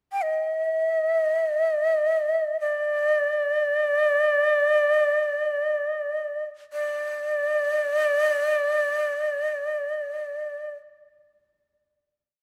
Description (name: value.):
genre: japanese traditional, Japanese chamber music.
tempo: free time.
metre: none.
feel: none.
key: unclear.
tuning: A4 = 444 Hz.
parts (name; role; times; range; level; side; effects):
breathy bright shakuhachi; solo; 0.1-10.7 s; D5 to G5; -24 LUFS; equal; none.
room: moderate concert hall reverb, RT60 1.9 s.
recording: none.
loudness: -24 LUFS.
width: mono.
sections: 0.0-6.7 free-time section; 6.7-11.2 final note.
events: slowing down 2.6-6.7.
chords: none.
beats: free time.